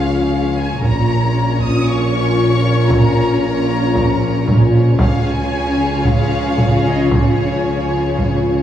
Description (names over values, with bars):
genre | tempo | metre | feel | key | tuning
cinematic, epic orchestral film score | 114 BPM | 4/4 | straight | Bb minor | A4 = 443 Hz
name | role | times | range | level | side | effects
warm symphonic violin section | melody | 0.0-8.6 s | Db5 to Eb6 | -24 LUFS | left 2 dB | none
rich symphonic violin section | second line | 0.0-8.6 s | Ab4 to Db5 | -25 LUFS | left 2 dB | none
warm symphonic viola section | accompaniment | 0.0-8.6 s | Db4 to F4 | -21 LUFS | left 1 dB | none
mellow French horn section | sustained chords | 0.0-8.6 s | F3 to Db4 | -23 LUFS | left 3 dB | none
rich symphonic cello section | bass | 0.0-8.6 s | Bb2 to Db3 | -22 LUFS | right 1 dB | none
rich symphonic double bass section | bass | 0.0-8.6 s | Bb1 to Db2 | -21 LUFS | right 1 dB | none
warm tuba | bass | 0.0-8.6 s | Bb1 to Db2 | -22 LUFS | equal | none
taiko ensemble | drums | 0.8-8.6 s | none | -17 LUFS | right 1 dB | none
room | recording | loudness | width
moderate scoring stage reverb, RT60 1.6 s | heard from further back in the room, small room ambience | -13 LUFS | side -10 dB against mid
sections
0.0-8.6 A section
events
none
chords
0.0 Db; 0.8 Bbm; 5.0 Db